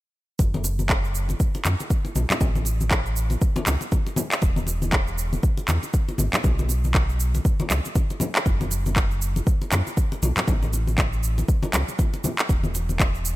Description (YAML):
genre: afro house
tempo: 119 BPM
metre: 4/4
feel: swing 58% on 16ths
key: F# minor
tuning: A4 = 439 Hz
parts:
  - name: round analog bass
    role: bass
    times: 0.4-13.4 s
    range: E1 to F#2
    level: -24 LUFS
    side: equal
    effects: sidechain pumping
  - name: electronic kick drum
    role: drums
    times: 0.4-13.1 s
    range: none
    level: -22 LUFS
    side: equal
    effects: studio ambience
  - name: electronic shaker and handclaps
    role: drums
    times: 0.4-13.4 s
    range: none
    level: -27 LUFS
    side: right 1 dB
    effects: studio ambience
  - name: congas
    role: percussion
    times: 0.4-13.1 s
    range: none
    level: -29 LUFS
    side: left 2 dB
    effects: none
room: little or no reverb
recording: none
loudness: -20 LUFS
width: side -17 dB against mid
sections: 0.4-13.4 A section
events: none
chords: none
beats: | 0.39 0.90 1.40 1.91 | 2.41 2.91 3.42 3.92 | 4.43 4.93 5.43 5.94 | 6.44 6.95 7.45 7.96 | 8.46 8.96 9.47 9.97 | 10.48 10.98 11.48 11.99 | 12.49 13.00